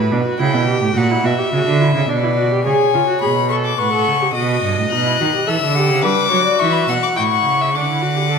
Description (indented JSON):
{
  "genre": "classical, baroque-style fugue for string quartet",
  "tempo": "106 BPM",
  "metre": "3/4",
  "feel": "straight",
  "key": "unclear",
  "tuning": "A4 = 436 Hz",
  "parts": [
    { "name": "warm violin", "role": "second line", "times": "0.0-8.4 s", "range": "B4 to G5", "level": "-21 LUFS", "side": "left 4 dB", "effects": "none" },
    { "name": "warm viola", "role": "accompaniment", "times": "0.0-8.4 s", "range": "D4 to B4", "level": "-21 LUFS", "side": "right 2 dB", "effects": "none" },
    { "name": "rich cello", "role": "bass", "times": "0.0-8.4 s", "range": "G2 to G3", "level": "-19 LUFS", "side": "right 4 dB", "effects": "none" },
    { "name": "rich violin", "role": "melody", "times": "2.7-8.4 s", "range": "G#5 to F#6", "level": "-18 LUFS", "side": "left 9 dB", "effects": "none" }
  ],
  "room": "wet scoring stage reverb, RT60 1.8 s",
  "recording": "none",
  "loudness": "-14 LUFS",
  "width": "side -5 dB against mid",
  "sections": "0.0-2.7 A section; 2.7-8.4 B section",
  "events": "none",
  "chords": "0.4 C#m7b5; 1.0 F#/A#; 2.1 Bm; 2.7 C#7(no3); 3.8 F#m/A; 4.4 B; 5.5 Em; 6.0 G; 6.6 E5; 7.2 A; 7.7 D"
}